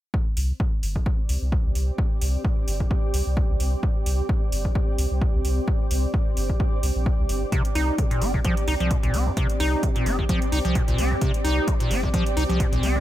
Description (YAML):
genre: acid house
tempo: 130 BPM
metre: 4/4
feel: swing 55% on 16ths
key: C minor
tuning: A4 = 440 Hz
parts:
  - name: electronic kick drum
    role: drums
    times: 0.1-12.7 s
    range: none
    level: -24 LUFS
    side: equal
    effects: none
  - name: granular cloud pad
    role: texture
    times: 1.2-13.0 s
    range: C4 to D5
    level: -30 LUFS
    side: right 1 dB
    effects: built-in reverb, sidechain pumping
  - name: warm sub bass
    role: bass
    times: 0.4-13.0 s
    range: G1 to C2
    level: -24 LUFS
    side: equal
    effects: sidechain pumping
  - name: electronic hi-hat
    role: drums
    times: 0.4-12.9 s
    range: none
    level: -35 LUFS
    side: right 1 dB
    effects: none
  - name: liquid acid bass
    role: riff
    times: 7.5-13.0 s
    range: C2 to Eb4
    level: -26 LUFS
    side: equal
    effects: chorus, overdrive, cassette tape, tape echo
room: little or no reverb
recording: none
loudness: -21 LUFS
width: side -14 dB against mid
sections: 0.1-13.0 A section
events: none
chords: 0.1 C5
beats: | 0.14 0.60 1.06 1.52 | 1.98 2.45 2.91 3.37 | 3.83 4.29 4.75 5.21 | 5.68 6.14 6.60 7.06 | 7.52 7.98 8.45 8.91 | 9.37 9.83 10.29 10.75 | 11.21 11.68 12.14 12.60